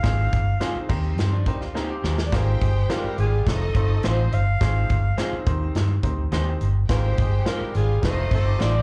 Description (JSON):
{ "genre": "uptempo 1960s-style soul", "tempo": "105 BPM", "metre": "4/4", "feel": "straight", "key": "unclear", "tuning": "A4 = 441 Hz", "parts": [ { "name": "breathy alto saxophone", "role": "melody", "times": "0.0-8.8 s", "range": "Ab4 to F5", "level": "-31 LUFS", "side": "equal", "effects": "slapback echo" }, { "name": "clear upright piano", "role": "accompaniment", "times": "0.0-8.8 s", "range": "Ab2 to C5", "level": "-34 LUFS", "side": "equal", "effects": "slapback echo" }, { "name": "vintage muted fingered electric bass", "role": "bass", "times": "0.0-8.8 s", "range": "F1 to G2", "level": "-24 LUFS", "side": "equal", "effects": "none" }, { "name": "natural country drum kit", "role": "drums", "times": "0.0-8.7 s", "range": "crash cymbal, hi-hat, kick drum, snare drum", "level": "-28 LUFS", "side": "equal", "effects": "none" }, { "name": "electric guitar through a small old amp", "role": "stabs", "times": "0.6-8.8 s", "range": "Ab3 to C5", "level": "-37 LUFS", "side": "equal", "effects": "lush chorus, slapback echo, analog delay" }, { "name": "clean electric guitar", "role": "riff", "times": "1.2-2.3, 8.0-8.8 s", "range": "Eb3 to A4", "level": "-37 LUFS", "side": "equal", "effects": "slapback echo" }, { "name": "dark horn section", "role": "second line", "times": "2.3-8.8 s", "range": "G3 to C5", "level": "-38 LUFS", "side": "equal", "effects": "slapback echo, analog delay" }, { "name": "rich studio violin section", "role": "second line", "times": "2.3-8.8 s", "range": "Eb4 to G5", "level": "-39 LUFS", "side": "equal", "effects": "slapback echo" } ], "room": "little or no reverb", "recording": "live gig heard through the venue's PA, cassette tape, club reverb", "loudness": "-22 LUFS", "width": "mono", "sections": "0.0-8.8 A section", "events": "drum fill 1.8-2.3", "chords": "0.0 Ab6; 0.9 Eb6; 2.3 Ab6; 3.5 F7; 4.6 Ab6; 5.5 Eb6; 6.9 Ab6; 8.0 F7", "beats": "| 0.04 0.61 1.18 1.75 | 2.32 2.89 3.47 4.04 | 4.61 5.18 5.75 6.32 | 6.89 7.46 8.03 8.61" }